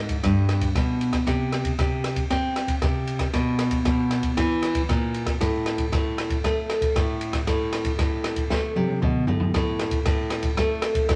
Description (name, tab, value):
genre	samba and choro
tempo	116 BPM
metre	4/4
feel	straight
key	unclear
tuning	A4 = 439 Hz
part	nylon-string guitar	bass	0.0-11.2 s	G2 to C4	-26 LUFS	equal	none
part	open jazz drum kit	drums	0.1-11.2 s	kick drum, ride cymbal, rim click, snare drum, toms	-27 LUFS	equal	none
room	moderate studio reverb, RT60 0.6 s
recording	none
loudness	-24 LUFS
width	mono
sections	0.0-9.5 A section; 9.5-11.2 B section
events	drum fill 8.5-9.5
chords	none